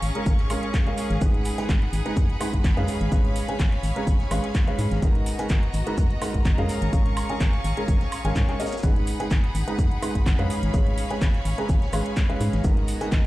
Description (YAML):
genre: piano house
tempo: 126 BPM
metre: 4/4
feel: swing 54% on 16ths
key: unclear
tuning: A4 = 440 Hz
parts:
  - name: clear studio violin section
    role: sustained chords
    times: 0.0-13.3 s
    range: F#4 to C#6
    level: -35 LUFS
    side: equal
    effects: sidechain pumping
  - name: organ-like FM bass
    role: bass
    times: 0.0-13.3 s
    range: G#1 to G#2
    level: -26 LUFS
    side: equal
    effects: tube saturation, sidechain pumping
  - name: crunchy breakbeat drum kit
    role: drums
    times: 0.0-13.2 s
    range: hi-hat, shaker, snare drum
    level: -41 LUFS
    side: equal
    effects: sidechain pumping on hats, high-pass filter on hats, high-pass filter on snare, sidechain pumping on perc, high-pass filter on perc, high-pass filter on room
  - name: house drum kit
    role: drums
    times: 0.0-13.2 s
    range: handclaps, hi-hat, woodblock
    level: -35 LUFS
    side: right 1 dB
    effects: none
  - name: bright studio string section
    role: texture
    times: 0.0-13.3 s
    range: B3 to B5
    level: -36 LUFS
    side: left 1 dB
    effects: sidechain pumping
  - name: warm upright piano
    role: riff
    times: 0.2-13.1 s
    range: G#3 to A#5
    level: -29 LUFS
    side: right 1 dB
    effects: sidechain pumping, digital delay
  - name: electronic kick drum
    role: drums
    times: 0.3-13.2 s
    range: none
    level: -22 LUFS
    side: equal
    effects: none
room: studio ambience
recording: played on a big sound system in a bare room, large studio reverb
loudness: -21 LUFS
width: side -17 dB against mid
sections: 0.0-13.3 A section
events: none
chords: 0.0 A#m7/G#; 1.2 G#m7; 2.9 C#7/G#; 5.0 Bmaj7/G#; 6.7 A#m7/G#; 8.8 G#m7; 10.5 C#7/G#; 12.6 Bmaj7/G#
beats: 0.26 0.74 | 1.22 1.69 2.17 2.64 | 3.12 3.60 4.07 4.55 | 5.02 5.50 5.98 6.45 | 6.93 7.41 7.88 8.36 | 8.83 9.31 9.79 10.26 | 10.74 11.21 11.69 12.17 | 12.64 13.12